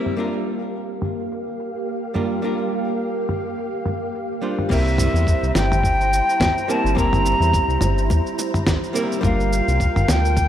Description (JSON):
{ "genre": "sunset chillout", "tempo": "106 BPM", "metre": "4/4", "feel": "swing 57% on 16ths", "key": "unclear", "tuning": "A4 = 439 Hz", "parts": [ { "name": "archtop guitar, miked and amplified", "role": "accompaniment", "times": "0.0-10.5 s", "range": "G3 to C5", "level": "-26 LUFS", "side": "right 1 dB", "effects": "auto-pan, digital delay" }, { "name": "soft string machine", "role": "sustained chords", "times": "0.0-10.5 s", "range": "Bb3 to Bb5", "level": "-26 LUFS", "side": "equal", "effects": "ensemble chorus" }, { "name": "dusty soul sampler-style drum kit", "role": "drums", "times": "0.1-10.5 s", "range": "cabasa, crash cymbal, snare drum, toms", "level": "-24 LUFS", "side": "equal", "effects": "low-pass filter on perc, low-pass filter on toms, low-pass filter on cymbals, low-pass filter on snare" }, { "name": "bright silver concert flute", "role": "melody", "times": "4.7-10.5 s", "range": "E5 to Bb5", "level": "-22 LUFS", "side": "left 1 dB", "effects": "vintage 12-bit sampler grit, digital delay" }, { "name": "round analog bass", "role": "bass", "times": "4.7-10.5 s", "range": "G1 to E2", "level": "-20 LUFS", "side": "equal", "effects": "none" }, { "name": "electronic kick drum", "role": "drums", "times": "4.7-10.5 s", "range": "none", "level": "-22 LUFS", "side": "equal", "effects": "none" }, { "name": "bongos", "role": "percussion", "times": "5.6-10.2 s", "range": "none", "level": "-33 LUFS", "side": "left 1 dB", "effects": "none" } ], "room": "moderate plate reverb, RT60 2.5 s", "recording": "rough home demo mix", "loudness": "-18 LUFS", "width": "side -10 dB against mid", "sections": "0.0-4.7 A section; 4.7-10.5 B section", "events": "filter sweep on string machine 0.0-4.7", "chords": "0.2 Gm7; 4.7 C7; 9.2 Gm7" }